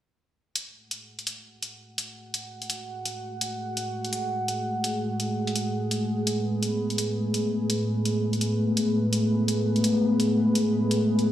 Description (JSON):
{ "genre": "half-time drum and bass", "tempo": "168 BPM", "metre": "4/4", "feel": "swing 55% on 16ths, half-time", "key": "F# minor", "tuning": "A4 = 442 Hz", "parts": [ { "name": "dark analog pad", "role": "sustained chords", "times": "0.6-11.3 s", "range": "A3 to F#5", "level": "-24 LUFS", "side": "equal", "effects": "chorus" }, { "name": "electronic hi-hat", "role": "drums", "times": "0.6-11.3 s", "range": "none", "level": "-31 LUFS", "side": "left 1 dB", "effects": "none" } ], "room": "moderate lush hall reverb, RT60 1.8 s", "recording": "played on a big sound system in a bare room, large studio reverb", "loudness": "-24 LUFS", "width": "side -12 dB against mid", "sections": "0.6-11.3 A section", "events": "filter sweep on analog synth pad 0.6-11.3", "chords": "0.6 F#madd9", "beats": "| 0.55 0.91 1.27 1.63 | 1.98 2.34 2.70 3.05 | 3.41 3.77 4.13 4.48 | 4.84 5.20 5.55 5.91 | 6.27 6.63 6.98 7.34 | 7.70 8.05 8.41 8.77 | 9.13 9.48 9.84 10.20 | 10.55 10.91 11.27" }